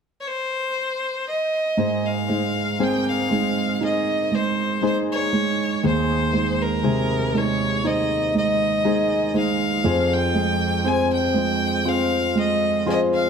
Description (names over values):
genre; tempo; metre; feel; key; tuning
pop; 60 BPM; 4/4; straight; Ab major; A4 = 441 Hz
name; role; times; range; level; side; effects
bright violin; melody; 0.2-13.3 s; Bb4 to Ab5; -24 LUFS; left 2 dB; none
warm grand piano; accompaniment; 1.8-13.3 s; Eb2 to F4; -22 LUFS; right 6 dB; none
fingerpicked steel-string acoustic guitar; arpeggios; 1.8-13.3 s; F3 to C5; -25 LUFS; left 7 dB; ping-pong delay
room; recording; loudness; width
moderate recital hall reverb, RT60 1.7 s, small room reverb; dark, warm production; -19 LUFS; side -6 dB against mid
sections
0.0-1.8 A section; 1.8-13.3 B section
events
none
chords
0.0 N.C.; 1.8 Abadd9; 9.8 Fm